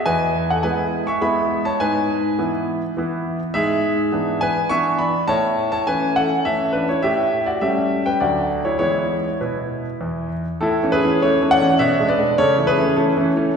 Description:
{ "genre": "classical-period piano sonatina", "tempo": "103 BPM", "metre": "3/4", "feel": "straight", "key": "E major, A major from 3.5 s", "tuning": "A4 = 440 Hz", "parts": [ { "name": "clear concert grand piano", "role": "solo", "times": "0.0-13.6 s", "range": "D2 to C#6", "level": "-17 LUFS", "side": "equal", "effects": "none" } ], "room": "wet concert hall reverb, RT60 2.3 s", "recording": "recorded in a church or concert hall", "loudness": "-17 LUFS", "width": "side -6 dB against mid", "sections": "0.0-10.6 A section; 10.6-13.6 B section", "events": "none", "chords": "0.1 E; 1.8 E/G#; 3.5 E7/G#; 5.3 A; 7.0 A7; 8.2 D; 8.8 E; 10.6 A; 11.8 G#dim/B; 12.4 A/C#" }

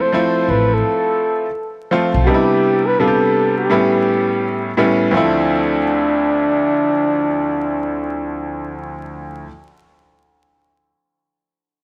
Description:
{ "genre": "hip hop", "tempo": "84 BPM", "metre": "4/4", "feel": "swing 64% on 16ths", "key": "D dorian", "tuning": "A4 = 439 Hz", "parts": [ { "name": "mellow flugelhorn", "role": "melody", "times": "0.0-8.8 s", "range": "D4 to C5", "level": "-20 LUFS", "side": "equal", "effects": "none" }, { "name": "bright grand piano", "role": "accompaniment", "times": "0.0-9.5 s", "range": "D2 to G4", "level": "-20 LUFS", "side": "equal", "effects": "none" }, { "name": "upright bass", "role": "bass", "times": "0.5-2.3 s", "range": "A1 to B1", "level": "-21 LUFS", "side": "equal", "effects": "none" } ], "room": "light reverb", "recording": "vinyl crackle", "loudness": "-17 LUFS", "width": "mono", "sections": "0.0-5.1 A section; 5.1-8.0 B section", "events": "none", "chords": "0.0 Dm7 (rootless); 2.3 Cmaj9; 3.7 A9; 5.1 Dm7" }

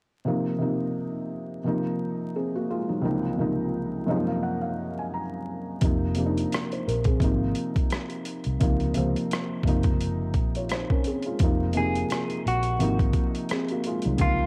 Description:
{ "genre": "lo-fi hip hop", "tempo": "86 BPM", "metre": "4/4", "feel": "swing 57% on 16ths", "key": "unclear", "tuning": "A4 = 440 Hz", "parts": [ { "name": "felt-muted upright piano", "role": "accompaniment", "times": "0.2-14.5 s", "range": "Db2 to Bb5", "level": "-29 LUFS", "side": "equal", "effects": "cassette tape" }, { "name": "vintage muted fingered electric bass", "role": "bass", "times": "5.8-14.5 s", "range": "F1 to Db2", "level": "-31 LUFS", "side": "equal", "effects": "none" }, { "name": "boom bap sampler-style drum kit", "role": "drums", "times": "5.8-14.4 s", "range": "hi-hat, kick drum, rim click", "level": "-28 LUFS", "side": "equal", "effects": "cassette tape" }, { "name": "clean electric guitar", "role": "melody", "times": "11.8-14.5 s", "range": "F4 to Ab4", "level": "-31 LUFS", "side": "equal", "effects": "none" } ], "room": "light reverb", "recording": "home recording on cassette, vinyl crackle", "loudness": "-27 LUFS", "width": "mono", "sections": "0.2-11.4 A section; 11.4-14.5 B section", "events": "felt piano fill 3.7-5.8", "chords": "0.2 Ab13/C; 3.0 Dbmaj9; 4.1 Gbmaj7; 5.8 F5; 7.2 Abadd9; 8.6 Dbmaj9; 9.7 Gbmaj7; 11.4 Fm7; 12.8 Abadd9" }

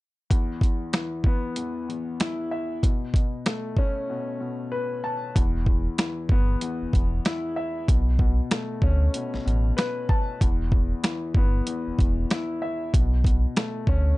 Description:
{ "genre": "hip hop, boom-bap hip-hop", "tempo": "95 BPM", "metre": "4/4", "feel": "swing 61% on 16ths", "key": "unclear", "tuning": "A4 = 438 Hz", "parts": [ { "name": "dark concert grand piano", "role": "accompaniment", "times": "0.3-14.2 s", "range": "E2 to A5", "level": "-29 LUFS", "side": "left 2 dB", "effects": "high-pass filter, low-pass filter, plate reverb" }, { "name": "dusty soul sampler-style drum kit", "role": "drums", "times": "0.3-14.1 s", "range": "hi-hat, kick drum, snare drum", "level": "-22 LUFS", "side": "equal", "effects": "none" }, { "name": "sub bass with octave", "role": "bass", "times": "5.4-14.1 s", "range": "E1 to D2", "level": "-23 LUFS", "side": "equal", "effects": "none" } ], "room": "light reverb", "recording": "dark, warm production, nothing above 10.4 kHz", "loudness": "-22 LUFS", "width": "side -19 dB against mid", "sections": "0.3-5.4 A section; 5.4-14.2 B section", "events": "break 4.1-5.4", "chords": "0.3 E5; 2.8 Bsus2; 5.4 Em; 7.9 Bm9; 10.4 Em; 12.9 Bm9" }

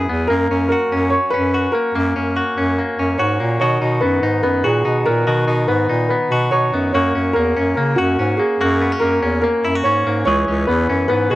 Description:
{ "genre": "jangly indie pop", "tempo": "144 BPM", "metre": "4/4", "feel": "straight", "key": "B major", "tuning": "A4 = 440 Hz", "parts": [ { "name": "direct-recorded clean electric guitar", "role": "arpeggios", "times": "0.0-11.4 s", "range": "D#3 to G#4", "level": "-20 LUFS", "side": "left 2 dB", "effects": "none" }, { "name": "mellow bass clarinet", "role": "bass", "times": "0.0-11.4 s", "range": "C#2 to C#3", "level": "-19 LUFS", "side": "equal", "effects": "none" }, { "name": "dark upright piano", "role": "melody", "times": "0.3-11.4 s", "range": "F#4 to C#5", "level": "-19 LUFS", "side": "equal", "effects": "none" } ], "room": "light reverb", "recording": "none", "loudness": "-15 LUFS", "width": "side -16 dB against mid", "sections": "0.0-3.6 A section; 3.6-11.4 B section", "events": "none", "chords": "0.3 F#; 3.6 B; 6.9 F#; 10.3 C#m7" }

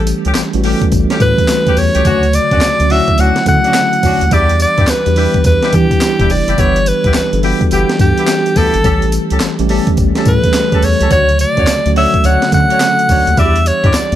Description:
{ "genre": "R&B, new jack swing", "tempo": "106 BPM", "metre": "4/4", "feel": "swing 64% on 16ths", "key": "unclear", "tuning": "A4 = 440 Hz", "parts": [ { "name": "bright alto saxophone", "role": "melody", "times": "0.0-14.2 s", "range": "G4 to F#5", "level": "-14 LUFS", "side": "right 1 dB", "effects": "none" }, { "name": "mellow tine electric piano", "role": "accompaniment", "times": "0.0-14.2 s", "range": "C#3 to A4", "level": "-17 LUFS", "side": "equal", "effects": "medium stereo tremolo" }, { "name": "round analog bass", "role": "bass", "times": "0.0-14.2 s", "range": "E1 to E3", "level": "-15 LUFS", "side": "equal", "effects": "none" }, { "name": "breakbeat sampler-style drum kit", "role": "drums", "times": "0.1-14.2 s", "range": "handclaps, hi-hat, kick drum, snare drum, tambourine", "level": "-16 LUFS", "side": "equal", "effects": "none" }, { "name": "dark horn section", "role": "stabs", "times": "0.3-14.0 s", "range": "A3 to D5", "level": "-22 LUFS", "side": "left 3 dB", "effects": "none" } ], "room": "digital ambience", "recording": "none", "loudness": "-10 LUFS", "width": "side -12 dB against mid", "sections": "0.0-14.2 A section", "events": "none", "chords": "0.0 A7; 2.1 Dmaj7; 4.3 Em7; 6.6 G6; 8.8 A7; 11.1 Dmaj7; 13.4 Em7" }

